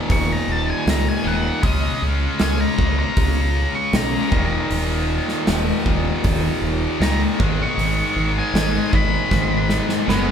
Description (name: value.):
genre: quiet-loud alternative rock.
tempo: 78 BPM.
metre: 4/4.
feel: straight.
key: unclear.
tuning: A4 = 444 Hz.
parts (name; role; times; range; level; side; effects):
heavy high-gain guitar; riff; 0.0-10.3 s; Eb2 to Db4; -23 LUFS; equal; distortion.
octave-fuzz lead guitar; melody; 0.1-10.3 s; Cb4 to Db6; -25 LUFS; left 1 dB; distortion.
growling fingered electric bass; bass; 0.1-10.3 s; Eb1 to Db2; -23 LUFS; equal; overdrive.
big rock drum kit; drums; 0.1-10.3 s; hi-hat, kick drum, snare drum; -22 LUFS; equal; none.
room: light reverb.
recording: band playing live in one room.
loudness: -17 LUFS.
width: side -8 dB against mid.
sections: 0.0-10.3 A section.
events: lead electric guitar solo 0.0-10.3; drum fill 9.3-10.3.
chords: 0.0 Eb5; 1.6 Db5; 4.3 Eb5; 7.4 Abm.